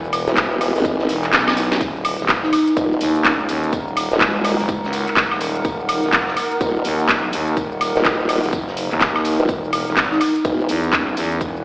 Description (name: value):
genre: bass house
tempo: 125 BPM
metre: 4/4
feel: swing 61% on 16ths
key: Eb phrygian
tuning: A4 = 440 Hz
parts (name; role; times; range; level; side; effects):
- growling FM bass; bass; 0.0-11.6 s; Eb1 to E2; -22 LUFS; equal; overdrive, sidechain pumping
- house drum kit; drums; 0.0-11.6 s; handclaps, hi-hat, ride cymbal, shaker, snare drum, woodblock; -19 LUFS; equal; none
- granular cloud pad; texture; 0.0-11.6 s; Eb4 to G#5; -26 LUFS; equal; built-in reverb, sidechain pumping
- tambourine and snare drum; drums; 0.1-11.5 s; none; -31 LUFS; equal; high-pass filter on snare, sidechain pumping on perc, high-pass filter on perc, high-pass filter on room
- formant-sweep wobble bass; bass; 0.3-10.7 s; Eb1 to G#1; -18 LUFS; equal; chorus, tube saturation, sidechain pumping
- electronic kick drum; drums; 0.4-11.5 s; none; -24 LUFS; equal; none
- swell; sound effects; 1.1-1.8 s; none; -29 LUFS; equal; none
- marimba with medium mallets; melody; 2.4-4.5, 10.1-11.1 s; Ab3 to Eb4; -22 LUFS; equal; none
room: moderate lush hall reverb, RT60 2.0 s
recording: played on a big sound system in a bare room, large studio reverb, AM radio sound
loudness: -16 LUFS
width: side -25 dB against mid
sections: 0.0-11.6 A section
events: kick drops out 1.3-1.8; drum fill 1.3-1.8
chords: 0.0 E; 1.8 Ebm; 9.5 E